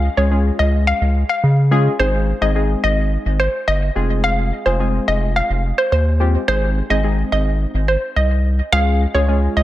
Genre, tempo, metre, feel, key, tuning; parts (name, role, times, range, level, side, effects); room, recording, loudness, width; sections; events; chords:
dance-pop; 107 BPM; 4/4; straight; Ab major; A4 = 440 Hz
warm analog keys; accompaniment; 0.0-9.6 s; Ab3 to Ab4; -22 LUFS; left 2 dB; chorus, dub echo
round analog bass; bass; 0.0-9.6 s; F1 to Db3; -17 LUFS; equal
hollow square pluck; melody; 0.2-9.6 s; C5 to F5; -20 LUFS; right 1 dB; chorus, dub echo
light reverb, digital ambience; echo-heavy mix; -15 LUFS; side -14 dB against mid
0.0-9.6 A section
0.0 Db; 2.0 Ab; 4.0 Fm; 6.5 Ab; 8.7 Db